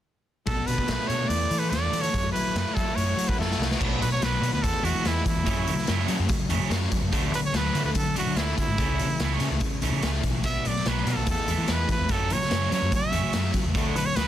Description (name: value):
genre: indie rock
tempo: 145 BPM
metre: 4/4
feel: straight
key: unclear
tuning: A4 = 438 Hz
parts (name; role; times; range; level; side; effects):
- bright trumpet; melody; 0.5-14.3 s; E4 to E5; -29 LUFS; right 3 dB; analog delay
- fuzz guitar; riff; 0.5-14.3 s; F#2 to C#5; -32 LUFS; left 8 dB; distortion
- vintage muted picked electric bass; bass; 0.5-14.3 s; B1 to F#3; -28 LUFS; equal; none
- raw garage drum kit; drums; 0.5-14.3 s; crash cymbal, hi-hat, kick drum, snare drum; -28 LUFS; equal; none
- distorted electric guitar; riff; 3.8-14.3 s; B2 to F#4; -33 LUFS; right 8 dB; distortion, wide subtle chorus, analog delay
room: light reverb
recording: dense, heavily limited modern master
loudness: -23 LUFS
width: side -11 dB against mid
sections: 0.5-3.8 A section; 3.8-14.3 B section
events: drum fill 3.4-3.8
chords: 0.5 Bm7; 1.3 E7sus4; 2.1 F#m7; 3.8 Bm; 4.6 E5; 5.5 F#m7; 7.1 D; 8.8 A/C#; 10.4 Bm; 11.3 Esus4; 12.1 F#m7; 13.8 D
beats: | 0.47 0.89 1.30 1.72 | 2.14 2.56 2.97 3.39 | 3.80 4.22 4.63 5.05 | 5.47 5.88 6.29 6.71 | 7.12 7.54 7.95 8.37 | 8.78 9.20 9.61 10.03 | 10.44 10.85 11.27 11.68 | 12.10 12.51 12.93 13.34 | 13.75 14.17